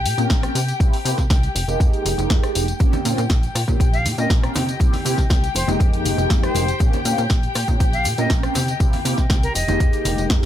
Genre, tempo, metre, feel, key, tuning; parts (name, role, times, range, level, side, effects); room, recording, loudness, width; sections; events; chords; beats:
filtered disco house; 120 BPM; 4/4; straight; Bb dorian; A4 = 441 Hz
dark studio violin section; sustained chords; 0.0-10.5 s; G4 to G5; -28 LUFS; left 4 dB; sidechain pumping
plucky analog bass; bass; 0.0-10.5 s; F1 to C3; -24 LUFS; equal; sidechain pumping
punchy analog drum machine; drums; 0.1-10.5 s; hi-hat, rim click, snare drum, tambourine; -26 LUFS; left 1 dB; sidechain pumping on hats, sidechain pumping on cymbals, sidechain pumping on perc
mellow synth brass; accompaniment; 0.2-10.5 s; Ab3 to Bb4; -25 LUFS; equal; chorus, phaser, sidechain pumping
electronic kick drum; drums; 0.3-10.4 s; -18 LUFS; equal
tube shaker and congas; percussion; 2.8-10.5 s; -31 LUFS; right 2 dB
bright reedy silver concert flute; melody; 3.9-10.3 s; Bb4 to F5; -27 LUFS; equal; vintage 12-bit sampler grit, sidechain pumping, ping-pong delay
digital ambience; -17 LUFS; side -11 dB against mid
0.0-10.5 A section
0.0 Bbm69; 0.6 C7; 1.6 Fm11; 2.8 Bbm69; 4.6 C7; 5.6 Fm11; 6.8 Bbm69; 8.6 C7; 9.6 Fm11
0.30 | 0.80 1.30 1.80 2.30 | 2.80 3.30 3.80 4.30 | 4.80 5.30 5.80 6.30 | 6.80 7.30 7.80 8.30 | 8.80 9.30 9.80 10.30